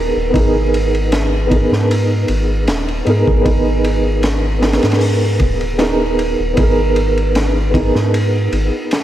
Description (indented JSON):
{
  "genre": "trip hop",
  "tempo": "77 BPM",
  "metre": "4/4",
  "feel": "swing 53% on 16ths",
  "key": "G# minor",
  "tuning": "A4 = 440 Hz",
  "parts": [
    { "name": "felt-muted upright piano", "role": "accompaniment", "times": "0.0-9.0 s", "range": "B3 to A#4", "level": "-16 LUFS", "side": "right 1 dB", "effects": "tremolo, tape echo" },
    { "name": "soft dub sub bass", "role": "bass", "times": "0.0-8.7 s", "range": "D#1 to G#2", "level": "-17 LUFS", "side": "equal", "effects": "none" },
    { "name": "crunchy breakbeat drum kit", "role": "drums", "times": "0.3-9.0 s", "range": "hi-hat, kick drum, ride cymbal, snare drum", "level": "-20 LUFS", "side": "equal", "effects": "none" }
  ],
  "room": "moderate lush hall reverb, RT60 2.6 s",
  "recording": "dreamy mix soaked in reverb, vinyl crackle",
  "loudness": "-13 LUFS",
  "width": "side -12 dB against mid",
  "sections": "0.0-9.0 A section",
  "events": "none",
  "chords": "0.0 G#madd9",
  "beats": "| 0.34 1.12 1.90 2.68 | 3.46 4.24 5.02 5.80 | 6.58 7.36 8.13 8.91"
}